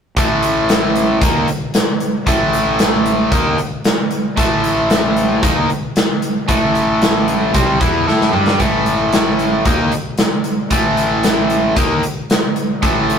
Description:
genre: blues rock power trio and southern rock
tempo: 114 BPM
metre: 4/4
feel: straight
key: A minor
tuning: A4 = 439 Hz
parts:
  - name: biting overdriven guitar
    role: riff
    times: 0.2-13.2 s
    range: A2 to A4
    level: -16 LUFS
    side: equal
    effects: none
  - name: fuzz fingered electric bass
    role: bass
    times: 0.2-13.2 s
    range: A1 to A2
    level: -22 LUFS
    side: equal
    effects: overdrive
  - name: big rock drum kit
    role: drums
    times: 0.2-13.2 s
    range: hi-hat, kick drum, snare drum, toms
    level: -16 LUFS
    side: equal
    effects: none
room: light reverb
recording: rough rehearsal-room recording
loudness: -13 LUFS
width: side -7 dB against mid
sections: 0.2-13.2 A section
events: drum fill 8.1-8.6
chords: 0.2 A5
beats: | 0.17 0.69 1.22 1.74 | 2.27 2.79 3.32 3.85 | 4.37 4.90 5.43 5.96 | 6.48 7.01 7.54 8.07 | 8.60 9.13 9.66 10.19 | 10.71 11.24 11.77 12.30 | 12.83

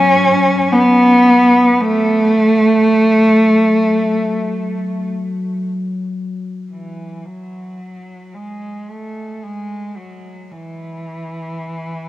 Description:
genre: ambient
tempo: free time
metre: none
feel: none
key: F# minor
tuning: A4 = 439 Hz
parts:
  - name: warm cello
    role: melody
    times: 0.0-12.1 s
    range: E3 to C#4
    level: -13 LUFS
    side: equal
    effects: plate reverb, analog delay
  - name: analog drone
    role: drone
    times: 0.0-6.3 s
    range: F#3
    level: -24 LUFS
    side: left 2 dB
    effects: chorus, cassette tape
room: wet booth ambience, RT60 0.3 s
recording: home recording on cassette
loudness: -11 LUFS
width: side -15 dB against mid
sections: 0.0-6.2 A section; 6.2-12.1 B section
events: none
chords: none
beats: free time

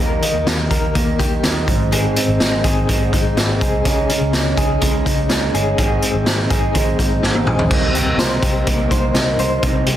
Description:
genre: jangly indie pop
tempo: 124 BPM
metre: 4/4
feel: straight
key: unclear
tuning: A4 = 440 Hz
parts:
  - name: electric guitar through a small old amp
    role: accompaniment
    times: 0.0-10.0 s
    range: Ab2 to Eb4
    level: -22 LUFS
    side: right 5 dB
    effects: lush chorus
  - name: direct-recorded clean electric guitar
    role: arpeggios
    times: 0.0-10.0 s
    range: Ab2 to C5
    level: -21 LUFS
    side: left 4 dB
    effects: tremolo, digital delay
  - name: vintage muted picked electric bass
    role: bass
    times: 0.0-10.0 s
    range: G1 to Eb2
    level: -22 LUFS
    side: equal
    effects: none
  - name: raw garage drum kit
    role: drums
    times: 0.2-10.0 s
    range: crash cymbal, hi-hat, kick drum, snare drum, toms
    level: -18 LUFS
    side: equal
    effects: none
room: moderate small room reverb, RT60 0.5 s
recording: dense, heavily limited modern master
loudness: -14 LUFS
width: side -11 dB against mid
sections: 0.0-7.7 A section; 7.7-10.0 B section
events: drum fill 7.2-7.7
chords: 0.0 Eb; 1.7 Ab; 3.9 Dbsus2; 5.8 Ab; 7.7 Cm7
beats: 0.47 0.95 1.44 | 1.92 2.40 2.88 3.37 | 3.85 4.33 4.82 5.30 | 5.78 6.26 6.74 7.23 | 7.71 8.19 8.67 9.15 | 9.63

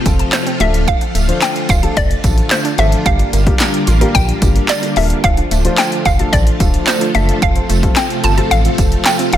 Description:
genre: dance-pop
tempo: 110 BPM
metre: 4/4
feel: straight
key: D minor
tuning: A4 = 440 Hz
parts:
  - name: hollow square pluck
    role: melody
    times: 0.0-9.4 s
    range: C5 to A5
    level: -18 LUFS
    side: equal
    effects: chorus, digital delay
  - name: string machine, violins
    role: sustained chords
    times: 0.0-9.4 s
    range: C3 to F4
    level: -21 LUFS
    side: equal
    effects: ensemble chorus, sidechain pumping
  - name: warm baby grand piano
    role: accompaniment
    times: 0.1-9.4 s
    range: F3 to C5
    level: -22 LUFS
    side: left 3 dB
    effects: sidechain pumping
  - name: sub bass with octave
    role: bass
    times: 0.1-9.4 s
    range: D1 to Bb1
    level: -15 LUFS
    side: equal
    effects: sidechain pumping
  - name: punchy analog drum machine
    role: drums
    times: 0.1-9.4 s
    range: handclaps, hi-hat, kick drum, snare drum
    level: -16 LUFS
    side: equal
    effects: overdrive
  - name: tambourine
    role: percussion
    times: 0.1-9.2 s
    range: none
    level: -28 LUFS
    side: right 7 dB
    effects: none
  - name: wide unison pluck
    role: arpeggios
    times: 0.5-9.4 s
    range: F3 to A5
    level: -27 LUFS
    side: right 4 dB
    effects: sidechain pumping, digital delay
room: light reverb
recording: dense, heavily limited modern master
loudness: -11 LUFS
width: side -11 dB against mid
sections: 0.0-9.4 A section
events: none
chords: 0.0 F; 0.6 Dm; 3.1 Gm7; 5.2 Dm; 7.4 F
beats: 0.33 | 0.88 1.42 1.97 2.51 | 3.06 3.60 4.15 4.69 | 5.24 5.79 6.33 6.88 | 7.42 7.97 8.51 9.06

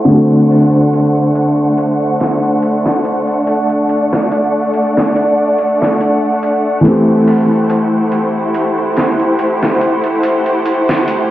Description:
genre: trip hop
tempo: 71 BPM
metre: 4/4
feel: swing 54% on 16ths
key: unclear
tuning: A4 = 440 Hz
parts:
  - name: felt-muted upright piano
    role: accompaniment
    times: 0.0-11.3 s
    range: D3 to G4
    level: -13 LUFS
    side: equal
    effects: tremolo, tape echo
  - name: warm symphonic violin section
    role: sustained chords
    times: 0.0-11.3 s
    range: A3 to F#5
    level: -14 LUFS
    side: equal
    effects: none
  - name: bowed-like drone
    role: texture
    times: 0.0-11.3 s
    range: F#5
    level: -25 LUFS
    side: right 3 dB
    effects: built-in reverb
  - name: trip hop sampler-style drum kit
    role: drums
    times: 0.1-11.3 s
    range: hi-hat, snare drum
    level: -20 LUFS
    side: right 1 dB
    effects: high-pass filter on hats, high-pass filter on snare, high-pass filter on room
room: light reverb, small room ambience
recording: dark, warm production, vinyl crackle, low-pass filter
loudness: -11 LUFS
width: side -14 dB against mid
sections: 0.0-11.3 A section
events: filter sweep 0.0-11.3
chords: 0.1 D7; 6.8 Am7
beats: | 0.09 0.93 1.78 2.62 | 3.47 4.31 5.16 6.00 | 6.85 7.70 8.54 9.38 | 10.23 11.07

